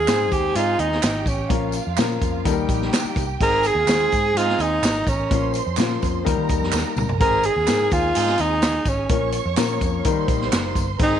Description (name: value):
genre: uptempo 1960s-style soul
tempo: 126 BPM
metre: 4/4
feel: straight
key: Ab major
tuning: A4 = 438 Hz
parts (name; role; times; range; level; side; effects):
- breathy tenor saxophone; melody; 0.0-11.2 s; Db4 to Bb4; -20 LUFS; right 1 dB; none
- clear horn section; second line; 0.0-11.2 s; Ab3 to Ab4; -29 LUFS; right 13 dB; none
- warm studio violin section; second line; 0.0-11.2 s; F4 to Db6; -30 LUFS; right 12 dB; tape echo
- vintage muted picked electric bass; bass; 0.0-11.2 s; Gb1 to Eb3; -27 LUFS; equal; none
- warm upright piano; accompaniment; 0.1-11.2 s; F3 to C5; -26 LUFS; left 12 dB; none
- vintage drum kit; drums; 0.1-11.1 s; hi-hat, kick drum, snare drum, toms; -24 LUFS; equal; none
- handclaps and tambourine; percussion; 0.1-10.9 s; none; -32 LUFS; right 4 dB; none
room: light reverb, small room ambience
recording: 1960s-style stereo with parts hard left and right, nothing above 11.0 kHz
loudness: -18 LUFS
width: side -9 dB against mid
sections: 0.0-11.2 A section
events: drum fill 6.7-7.2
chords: 0.0 Ab; 1.5 Bbm; 2.5 Eb; 3.4 Ab; 5.3 Bbm; 6.3 Eb; 7.2 Ab; 9.1 Bbm; 10.1 Eb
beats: 0.08 0.56 1.03 | 1.50 1.98 2.46 2.93 | 3.41 3.88 4.36 4.83 | 5.31 5.78 6.25 6.73 | 7.21 7.68 8.15 8.63 | 9.10 9.58 10.05 10.53 | 11.00